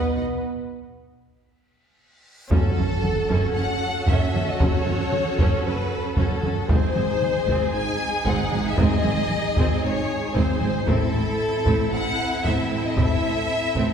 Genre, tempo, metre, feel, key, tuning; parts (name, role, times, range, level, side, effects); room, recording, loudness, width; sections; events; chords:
cinematic, epic orchestral film score; 115 BPM; 4/4; straight; F# dorian; A4 = 438 Hz
rich symphonic violin section; melody; 0.0-13.9 s; A4 to G#5; -29 LUFS; left 2 dB
warm symphonic violin section; second line; 0.0-13.9 s; A4 to G#5; -29 LUFS; left 3 dB
rich symphonic viola section; accompaniment; 0.0-13.9 s; B#3 to D#5; -31 LUFS; right 1 dB
mellow French horn section; sustained chords; 0.0-13.2 s; B3 to F#4; -33 LUFS; right 1 dB
warm studio string section; sustained chords; 0.0-13.9 s; G#3 to G#5; -30 LUFS; equal
clear symphonic double bass section; bass; 0.2-13.8 s; F#1 to B1; -29 LUFS; right 3 dB
rich symphonic cello section; bass; 0.2-13.8 s; F#2 to B2; -29 LUFS; right 3 dB
reverse cymbal and sub drop; sound effects; 2.3-4.6 s; -34 LUFS; equal
taiko ensemble; drums; 2.5-13.9 s; -25 LUFS; equal
timpani; percussion; 2.5-3.3 s; F#2; -30 LUFS; equal
wet scoring stage reverb, RT60 1.7 s; recorded in a church or concert hall; -20 LUFS; side -7 dB against mid
0.0-2.5 A section; 2.5-13.9 A section
break 0.4-2.5; drum fill 1.7-2.5; reverse cymbal 2.3; impact 2.5-4.6
0.0 B; 2.5 F#m; 6.7 G#; 10.9 Am